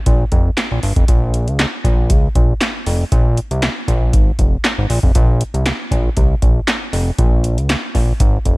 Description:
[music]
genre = early-eighties boogie funk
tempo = 118 BPM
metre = 4/4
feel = straight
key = Bb dorian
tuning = A4 = 440 Hz
[part]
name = fat analog bass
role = bass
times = 0.1-8.6 s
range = F1 to Db2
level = -16 LUFS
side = equal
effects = none
[part]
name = electro analog drum machine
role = drums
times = 0.1-8.6 s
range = handclaps, hi-hat, kick drum, snare drum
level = -15 LUFS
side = equal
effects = none
[sound]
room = little or no reverb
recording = none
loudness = -13 LUFS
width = side -23 dB against mid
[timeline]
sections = 0.0-1.1 A section; 1.1-8.6 B section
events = none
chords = none

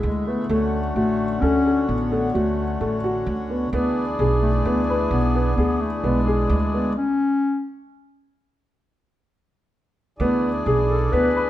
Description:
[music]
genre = contemporary instrumental, chamber music in an uneven meter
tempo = 130 BPM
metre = 7/4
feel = straight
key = unclear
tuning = A4 = 440 Hz
[part]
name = pedal harmonium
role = sustained chords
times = 0.0-11.5 s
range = D3 to G#4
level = -27 LUFS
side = left 2 dB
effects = none
[part]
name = dark baby grand piano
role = arpeggios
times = 0.0-11.5 s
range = A3 to B4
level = -24 LUFS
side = equal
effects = none
[part]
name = upright bass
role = bass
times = 0.0-11.5 s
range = A1 to D2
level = -24 LUFS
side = right 2 dB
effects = none
[part]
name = dark clarinet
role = melody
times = 0.1-11.5 s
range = G#3 to B4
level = -23 LUFS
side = left 3 dB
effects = none
[sound]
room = moderate recital hall reverb, RT60 1.4 s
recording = minimal, uncompressed stereo recording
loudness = -19 LUFS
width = side -13 dB against mid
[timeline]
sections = 0.0-10.2 A section; 10.2-11.5 A section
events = stop 7.0-10.2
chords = 0.5 Dmaj7; 3.7 E7; 7.0 N.C.; 10.2 E7

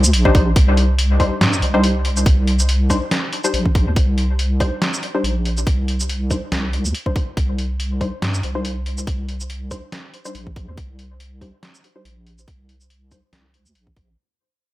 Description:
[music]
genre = deep dubstep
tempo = 141 BPM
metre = 4/4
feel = swing 55% on 16ths, half-time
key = C minor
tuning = A4 = 439 Hz
[part]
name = deep soft wobble bass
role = bass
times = 0.0-14.2 s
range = Bb1 to G2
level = -19 LUFS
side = equal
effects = chorus
[part]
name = trip hop sampler-style drum kit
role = drums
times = 0.0-14.1 s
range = hi-hat, shaker, snare drum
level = -23 LUFS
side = equal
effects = none
[part]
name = filtered dub chord stab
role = stabs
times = 0.3-13.2 s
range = G3 to C5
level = -23 LUFS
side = left 2 dB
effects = chorus, dub echo
[part]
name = electronic kick drum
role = drums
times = 0.3-14.1 s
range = none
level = -18 LUFS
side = equal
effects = none
[sound]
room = digital ambience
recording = none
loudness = -16 LUFS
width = side -17 dB against mid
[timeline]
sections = 0.6-14.2 A section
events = fade-out 0.6-14.2; filter sweep on synth stab 0.6-14.2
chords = 0.0 Cmadd9

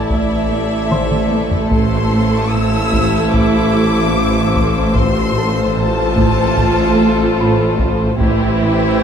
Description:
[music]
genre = cinematic, suspense film score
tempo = 74 BPM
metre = 4/4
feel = straight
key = A minor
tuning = A4 = 440 Hz
[part]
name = rich studio violin section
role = melody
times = 0.0-9.0 s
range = E5 to E6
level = -23 LUFS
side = left 4 dB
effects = none
[part]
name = clear studio violin section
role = second line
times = 0.0-9.0 s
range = G4 to D5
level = -20 LUFS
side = left 3 dB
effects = none
[part]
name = rich studio viola section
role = accompaniment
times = 0.0-9.0 s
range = E3 to F4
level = -19 LUFS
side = right 1 dB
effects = none
[part]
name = rich studio cello section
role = bass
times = 0.0-9.0 s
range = A2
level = -21 LUFS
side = right 3 dB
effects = none
[part]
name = rich studio double bass section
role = bass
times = 0.0-9.0 s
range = A1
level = -20 LUFS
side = right 1 dB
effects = none
[part]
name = swarming drone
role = drone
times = 0.0-9.0 s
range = A1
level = -24 LUFS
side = left 1 dB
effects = built-in reverb
[part]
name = felt-muted upright piano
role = texture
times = 0.0-9.0 s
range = A4 to C6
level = -28 LUFS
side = left 1 dB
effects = none
[part]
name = rich studio cello section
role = riff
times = 0.1-8.9 s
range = A2 to A3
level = -22 LUFS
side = right 2 dB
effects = none
[part]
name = solo taiko drums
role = drums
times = 0.1-9.0 s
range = none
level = -21 LUFS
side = left 1 dB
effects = none
[part]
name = rich studio violin section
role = texture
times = 1.7-7.8 s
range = F5 to E6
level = -30 LUFS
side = right 1 dB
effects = none
[sound]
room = moderate scoring stage reverb, RT60 1.7 s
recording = dark, warm production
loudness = -12 LUFS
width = side -8 dB against mid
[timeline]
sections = 0.0-9.0 A section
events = drum fill 0.9-1.7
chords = 0.0 Dsus2/A; 5.0 F/A; 8.2 C/A

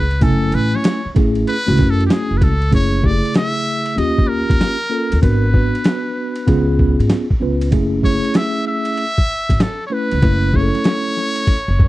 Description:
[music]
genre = hip hop, jazz-hop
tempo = 96 BPM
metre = 4/4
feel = swing 66% on 16ths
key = F# minor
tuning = A4 = 441 Hz
[part]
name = trumpet with metal mute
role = melody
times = 0.0-11.9 s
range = G4 to E5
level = -22 LUFS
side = equal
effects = none
[part]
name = mellow tine electric piano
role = accompaniment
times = 0.0-11.6 s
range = C#3 to G#5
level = -19 LUFS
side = right 1 dB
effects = medium stereo tremolo
[part]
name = upright bass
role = bass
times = 0.0-11.9 s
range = F#1 to G#2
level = -17 LUFS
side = equal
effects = none
[part]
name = boom bap sampler-style drum kit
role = drums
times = 0.1-11.9 s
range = hi-hat, kick drum, ride cymbal, snare drum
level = -16 LUFS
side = equal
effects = none
[sound]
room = digital ambience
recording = dry, close 1970s-style studio recording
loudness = -14 LUFS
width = side -17 dB against mid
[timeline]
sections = 0.0-2.7 A section; 2.7-11.9 B section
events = muted trumpet solo 0.0-2.7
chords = 0.0 F#m9; 4.0 D#7; 5.2 G#m7b5; 6.5 C#7; 7.7 F#m9

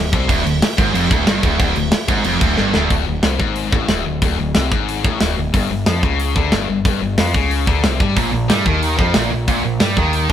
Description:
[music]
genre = heavy metal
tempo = 183 BPM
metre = 4/4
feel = straight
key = D phrygian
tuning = A4 = 440 Hz
[part]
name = heavy high-gain guitar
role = riff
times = 0.0-10.3 s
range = D2 to G3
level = -21 LUFS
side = left 7 dB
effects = distortion
[part]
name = growling picked electric bass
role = bass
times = 0.0-10.3 s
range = D1 to G2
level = -21 LUFS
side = equal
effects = overdrive
[part]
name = tight metal drum kit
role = drums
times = 0.1-10.3 s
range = crash cymbal, hi-hat, kick drum, snare drum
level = -18 LUFS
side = equal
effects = none
[part]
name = scooped high-gain guitar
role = riff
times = 0.3-2.9, 8.2-10.3 s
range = D2 to G3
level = -20 LUFS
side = right 7 dB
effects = distortion
[sound]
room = light reverb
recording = band playing live in one room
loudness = -14 LUFS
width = side -10 dB against mid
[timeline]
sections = 0.0-2.9 A section; 2.9-10.3 B section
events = drum fill 2.6-2.9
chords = 0.0 Dm; 2.9 D5; 5.5 G5; 8.2 Bb5

